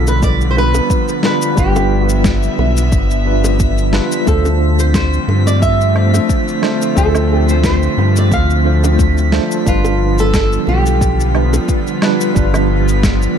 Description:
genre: sunset chillout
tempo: 89 BPM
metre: 4/4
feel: swing 54% on 16ths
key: unclear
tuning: A4 = 440 Hz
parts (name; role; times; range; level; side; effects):
- flamenco guitar; melody; 0.0-13.4 s; F4 to F5; -20 LUFS; right 1 dB; ping-pong delay
- tine electric piano; accompaniment; 0.0-13.4 s; G3 to C5; -19 LUFS; equal; medium stereo tremolo, auto-pan, ping-pong delay
- airy breathy pad; sustained chords; 0.0-13.4 s; D3 to E5; -20 LUFS; right 2 dB; chorus
- round analog bass; bass; 0.0-13.3 s; G1 to G2; -14 LUFS; equal; none
- drifting glass-harmonics texture; texture; 0.0-13.4 s; B6; -27 LUFS; right 3 dB; chorus, built-in reverb
- electronic cabasa, snare drum and woodblock; drums; 0.1-13.3 s; none; -21 LUFS; left 1 dB; none
- electronic kick drum; drums; 0.2-13.2 s; none; -17 LUFS; equal; none
- bongos; percussion; 0.7-12.7 s; none; -26 LUFS; right 2 dB; none
room: light reverb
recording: dark, warm production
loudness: -11 LUFS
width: side -8 dB against mid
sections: 0.0-13.4 A section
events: none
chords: 0.0 G7; 4.3 Dm7; 9.7 G7

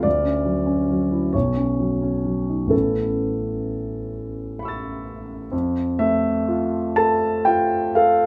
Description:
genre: classical, impressionist solo piano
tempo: 41-48 BPM (dotted quarters)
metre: 6/8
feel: rubato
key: unclear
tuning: A4 = 440 Hz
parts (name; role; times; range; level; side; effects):
- clear grand piano; solo; 0.0-8.3 s; A1 to A6; -22 LUFS; equal; none
room: light reverb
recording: none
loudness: -22 LUFS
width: mono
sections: 0.0-5.5 A section; 5.5-8.3 B section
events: none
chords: 0.1 Dmaj9; 1.3 Badd9; 2.7 Aadd9; 5.5 Fmaj7

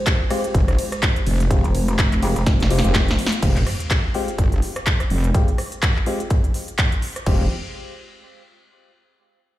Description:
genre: bass house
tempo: 125 BPM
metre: 4/4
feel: swing 57% on 16ths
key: F minor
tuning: A4 = 439 Hz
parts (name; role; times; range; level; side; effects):
- dark analog pad; sustained chords; 0.0-3.4 s; Ab3 to C5; -31 LUFS; equal; chorus, sidechain pumping
- big-room dance drum kit; drums; 0.1-7.4 s; crash cymbal, handclaps, hi-hat, ride cymbal, rim click, snare drum; -25 LUFS; equal; none
- electronic kick drum; drums; 0.1-7.4 s; none; -19 LUFS; equal; none
- percussive organ stab; stabs; 0.3-7.5 s; Ab3 to G4; -29 LUFS; left 2 dB; wide subtle chorus, cassette tape, sidechain pumping, ping-pong delay
- wobble bass; bass; 0.5-7.5 s; F1 to G1; -20 LUFS; equal; chorus, overdrive, sidechain pumping
- pulsing pluck wobble bass; bass; 1.6-2.6 s; F1; -20 LUFS; equal; chorus, overdrive, sidechain pumping
- sub drop; sound effects; 3.4-5.3 s; none; -29 LUFS; equal; none
room: light reverb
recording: played on a big sound system in a bare room, large studio reverb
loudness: -17 LUFS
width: side -15 dB against mid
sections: 0.0-3.4 A section; 3.4-7.3 B section; 7.3-9.2 C section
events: drop 0.0-3.4; drum fill 2.5-3.4; impact 3.4-5.3; filter sweep on synth stab 3.4-7.3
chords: 0.0 Fmadd9

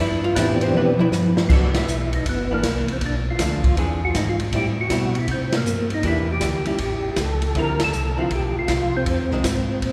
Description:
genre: soul jazz organ trio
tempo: 158 BPM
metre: 4/4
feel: swing 65% on 8ths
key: C major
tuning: A4 = 439 Hz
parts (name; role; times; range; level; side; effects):
- archtop guitar, miked and amplified; accompaniment; 0.0-9.4 s; D3 to F5; -30 LUFS; equal; none
- mellow tonewheel organ; bass; 0.0-9.9 s; G1 to C3; -27 LUFS; equal; chorus vibrato, slow rotary speaker
- percussive tonewheel organ; melody; 0.4-9.9 s; E3 to Bb4; -26 LUFS; equal; slow rotary speaker, chorus vibrato
- open jazz drum kit; drums; 0.4-9.9 s; crash cymbal, hi-hat, kick drum, ride cymbal, snare drum, toms; -26 LUFS; equal; none
room: wet cathedral reverb, RT60 4.2 s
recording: recorded in a church or concert hall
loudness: -21 LUFS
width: mono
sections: 0.0-1.5 A section; 1.5-9.9 B section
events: hollow-body jazz guitar solo 0.0-1.5; drum fill 0.7-1.5; band accent 1.7, 5.5, 7.7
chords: 0.0 Cmaj9; 3.0 Bm7b5; 3.8 Eaug7; 4.5 Am7; 6.0 Em7b5; 6.8 A7; 7.6 Dm9; 9.1 Fm7

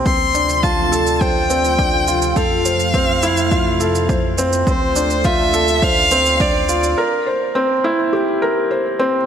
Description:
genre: piano and strings electronica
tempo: 104 BPM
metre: 4/4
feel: straight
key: D minor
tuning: A4 = 440 Hz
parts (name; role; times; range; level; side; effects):
- lush unison pad; sustained chords; 0.0-7.0 s; C3 to F5; -25 LUFS; equal; chorus, phaser, sidechain pumping
- felt-muted upright piano; riff; 0.0-9.3 s; C4 to C5; -18 LUFS; equal; ping-pong delay
- round analog bass; bass; 0.0-7.0 s; D2 to F2; -24 LUFS; equal; sidechain pumping
- rich violin; melody; 0.1-7.0 s; C5 to C6; -18 LUFS; left 1 dB; none
- electronic kick drum; drums; 0.1-6.5 s; none; -20 LUFS; equal; overdrive
- shaker; drums; 0.1-7.0 s; none; -27 LUFS; right 6 dB; overdrive, high-pass filter on perc
room: moderate concert hall reverb, RT60 2.0 s, studio reverb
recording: none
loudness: -14 LUFS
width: side -8 dB against mid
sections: 0.0-9.3 A section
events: build-up 0.0-9.3; break 7.0-9.3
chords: 0.1 Dm7; 2.4 Fmaj7; 4.7 Dm7; 7.0 C7

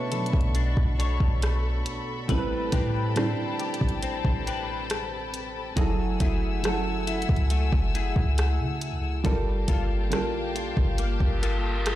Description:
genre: contemporary R&B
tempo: 69 BPM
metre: 4/4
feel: straight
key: B minor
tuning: A4 = 440 Hz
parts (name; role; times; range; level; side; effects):
- felt-muted upright piano; accompaniment; 0.0-12.0 s; A2 to C#5; -31 LUFS; right 3 dB; none
- muted studio string section; sustained chords; 0.0-12.0 s; A3 to E6; -34 LUFS; left 4 dB; sidechain pumping
- direct-recorded clean electric guitar; arpeggios; 0.0-12.0 s; F#3 to C#5; -34 LUFS; left 7 dB; ensemble chorus, ping-pong delay
- clean 808-style bass; bass; 0.0-12.0 s; F#1 to F#3; -27 LUFS; equal; none
- smooth R&B drum kit; drums; 0.1-12.0 s; hi-hat, kick drum, rim click; -27 LUFS; equal; none
- reverse cymbal; sound effects; 11.2-12.0 s; none; -34 LUFS; right 1 dB; none
room: digital ambience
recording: played on a big sound system in a bare room, large studio reverb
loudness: -24 LUFS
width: side -14 dB against mid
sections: 0.0-12.0 A section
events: reverse cymbal 11.2-12.0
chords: 0.0 Bm9; 2.3 Am9; 5.8 F#m9; 9.2 Gm9

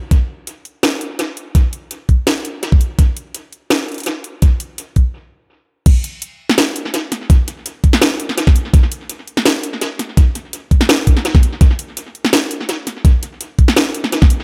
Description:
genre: drum and bass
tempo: 167 BPM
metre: 4/4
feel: swing 53% on 16ths, half-time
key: none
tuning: none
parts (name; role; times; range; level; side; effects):
- drum and bass drum kit; drums; 0.1-14.4 s; crash cymbal, hi-hat, snare drum; -19 LUFS; equal; overdrive, studio reverb, tape echo
- electronic kick drum; drums; 0.1-14.3 s; none; -12 LUFS; equal; studio reverb
room: light reverb, digital ambience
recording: echo-heavy mix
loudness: -16 LUFS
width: mono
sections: 0.0-5.9 A section; 5.9-14.4 B section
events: stop 5.1-5.9; drop 5.9-14.4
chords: none

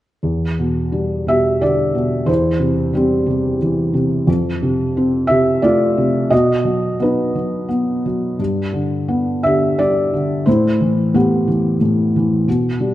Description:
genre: classical, lyrical solo piano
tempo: 88 BPM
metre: 3/4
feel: rubato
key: E minor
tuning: A4 = 439 Hz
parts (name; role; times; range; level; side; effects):
- felt-muted upright piano; solo; 0.2-12.9 s; E2 to E5; -15 LUFS; equal; none
room: moderate concert hall reverb, RT60 1.8 s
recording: dark, warm production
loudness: -15 LUFS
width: side -14 dB against mid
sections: 0.2-12.9 A section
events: none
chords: 0.2 Em7; 2.3 C/E; 4.3 F; 6.3 B; 8.4 G; 10.5 Amadd9

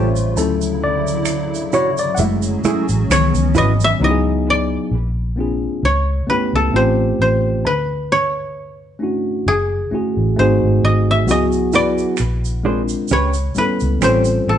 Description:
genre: R&B, neo-soul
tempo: 66 BPM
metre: 4/4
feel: swing 56% on 16ths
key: C# phrygian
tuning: A4 = 438 Hz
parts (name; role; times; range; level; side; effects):
- hollow-body jazz guitar; second line; 0.0-3.7, 11.7-14.2 s; A3 to C#5; -22 LUFS; right 4 dB; tape echo
- mellow tine electric piano; accompaniment; 0.0-14.6 s; D#3 to F#5; -20 LUFS; left 2 dB; none
- hollow soft pad; sustained chords; 0.0-4.0 s; C#3 to G#4; -25 LUFS; right 2 dB; ensemble chorus
- vintage muted fingered electric bass; bass; 0.0-14.6 s; F#1 to D2; -19 LUFS; equal; none
- tube shaker and finger snaps; percussion; 0.2-4.0, 11.3-14.4 s; none; -28 LUFS; right 7 dB; none
- koto; melody; 3.1-14.6 s; G#4 to E5; -18 LUFS; left 1 dB; none
room: light reverb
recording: band playing live in one room, nothing above 10.7 kHz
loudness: -15 LUFS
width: side -10 dB against mid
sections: 0.0-4.0 A section; 4.0-14.6 B section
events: tine electric piano solo 0.0-4.0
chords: 0.4 Dmaj9; 2.2 F#m9; 3.1 C#m11; 4.9 A#9; 5.8 A9/C#; 6.7 A7alt; 7.6 Dmaj9; 9.5 F#m9; 10.4 G#7b9; 11.3 C#m11; 12.2 A#9; 13.1 A9/C#; 14.0 A7alt

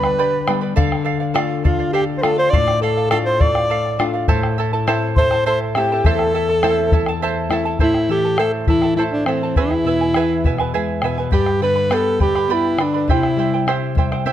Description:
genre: andean folk, Andean ensemble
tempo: 68 BPM (dotted quarters)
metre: 6/8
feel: straight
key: A minor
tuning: A4 = 442 Hz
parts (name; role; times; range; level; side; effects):
- warm alto saxophone; melody; 0.0-13.7 s; C4 to D5; -18 LUFS; equal; none
- reedy large quena; second line; 0.0-7.2 s; F5 to D6; -26 LUFS; left 2 dB; none
- charango; accompaniment; 0.0-14.3 s; E4 to B5; -22 LUFS; right 6 dB; none
- nylon-string guitar; accompaniment; 0.0-14.3 s; E2 to F4; -22 LUFS; left 5 dB; none
- bombo; percussion; 0.0-14.3 s; none; -20 LUFS; left 1 dB; none
room: light reverb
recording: close, detailed microphones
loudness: -15 LUFS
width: side -11 dB against mid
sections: 0.0-7.8 A section; 7.8-14.3 B section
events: none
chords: 0.0 G; 0.8 Dm; 4.3 Am; 9.6 E; 11.3 G; 13.1 C

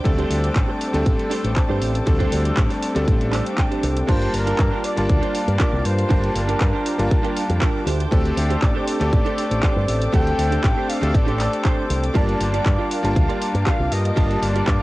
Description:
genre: nu-disco, nu disco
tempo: 119 BPM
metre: 4/4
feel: straight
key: G minor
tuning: A4 = 440 Hz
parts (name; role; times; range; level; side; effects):
- bright electric grand piano; accompaniment; 0.0-14.8 s; G3 to A5; -24 LUFS; left 1 dB; sidechain pumping
- muted studio string section; sustained chords; 0.0-14.8 s; Bb3 to D6; -34 LUFS; left 1 dB; sidechain pumping
- direct-recorded clean electric guitar; riff; 0.0-14.8 s; D4 to G5; -30 LUFS; right 7 dB; ensemble chorus, analog delay
- fingered electric bass with an envelope filter; bass; 0.1-14.8 s; G1 to G2; -22 LUFS; equal; tube saturation
- electronic kick drum; drums; 0.1-14.8 s; none; -20 LUFS; equal; small room ambience, cassette tape
- pop drum kit; drums; 0.1-14.8 s; crash cymbal, handclaps, hi-hat; -30 LUFS; equal; small room ambience, cassette tape
- mellow trumpet section; melody; 4.1-14.8 s; Bb4 to G5; -28 LUFS; equal; cassette tape, analog delay
room: digital ambience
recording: home recording on cassette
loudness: -17 LUFS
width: side -19 dB against mid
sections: 0.0-4.1 A section; 4.1-14.8 B section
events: clean electric guitar fill 3.1-4.1; drop 4.1-14.8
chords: 0.0 D7sus4; 4.1 Gm7; 7.9 D7sus4; 12.2 Gm7

